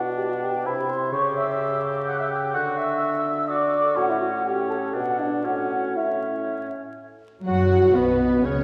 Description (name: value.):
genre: quick classical-period movement for symphony orchestra.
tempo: 124 BPM.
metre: 3/4.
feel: rubato.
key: unclear.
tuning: A4 = 440 Hz.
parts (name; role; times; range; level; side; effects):
dark clarinet; second line; 0.0-8.6 s; B3 to G5; -30 LUFS; equal; none.
warm oboe; second line; 0.0-8.6 s; B3 to G4; -34 LUFS; equal; none.
warm bassoon; accompaniment; 0.0-8.6 s; A2 to F#3; -31 LUFS; equal; none.
mellow hollow large flute ensemble; second line; 0.2-8.6 s; B4 to G6; -29 LUFS; equal; none.
rich symphonic violin section; melody; 7.5-8.6 s; B4 to F#5; -37 LUFS; equal; none.
rich studio violin section; second line; 7.5-8.6 s; B3 to F#4; -30 LUFS; equal; none.
rich chamber viola section; accompaniment; 7.5-8.6 s; none; barely audible; none; none.
dark French horn section; sustained chords; 7.5-8.6 s; B3 to F#4; -23 LUFS; equal; none.
rich chamber double bass section; bass; 7.5-8.6 s; B1 to F#2; -28 LUFS; equal; none.
warm chamber cello section; bass; 7.5-8.6 s; B2 to F#3; -29 LUFS; equal; none.
room: wet concert hall reverb, RT60 2.2 s.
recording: heard from further back in the room, vinyl crackle, lossy compression artefacts.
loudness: -23 LUFS.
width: mono.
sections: 0.0-7.0 A section; 7.0-8.6 B section.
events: none.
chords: 0.0 Em9/B (rootless); 0.7 C; 1.1 C#dim; 2.5 D; 4.0 A; 4.9 Bm; 5.4 A; 7.0 B5.